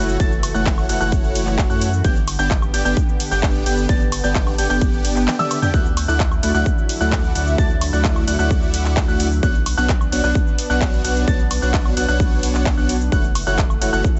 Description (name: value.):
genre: EDM, festival progressive house.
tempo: 130 BPM.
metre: 4/4.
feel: straight.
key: D major.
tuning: A4 = 440 Hz.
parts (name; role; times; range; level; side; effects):
lush unison pad; sustained chords; 0.0-14.2 s; D3 to G4; -30 LUFS; equal; chorus, phaser, sidechain pumping.
warm baby grand piano; arpeggios; 0.0-14.0 s; E6 to A6; -28 LUFS; equal; sidechain pumping, tape echo.
supersaw chords; riff; 0.0-14.0 s; A3 to A5; -26 LUFS; equal; subtle chorus, sidechain pumping, tape echo.
saturated sub bass; bass; 0.0-14.0 s; F#1 to F#2; -25 LUFS; equal; sidechain pumping.
big-room dance drum kit; drums; 0.1-14.2 s; cabasa, handclaps, hi-hat, toms, woodblock; -28 LUFS; equal; none.
electronic kick drum; drums; 0.2-14.1 s; none; -21 LUFS; equal; none.
room: light reverb.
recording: nothing above 7.9 kHz.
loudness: -18 LUFS.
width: mono.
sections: 0.0-14.2 A section.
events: drum fill 5.3-5.7.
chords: 0.0 F#m7; 2.0 G; 5.7 Dadd9; 9.4 Bmadd9; 13.1 F#m7.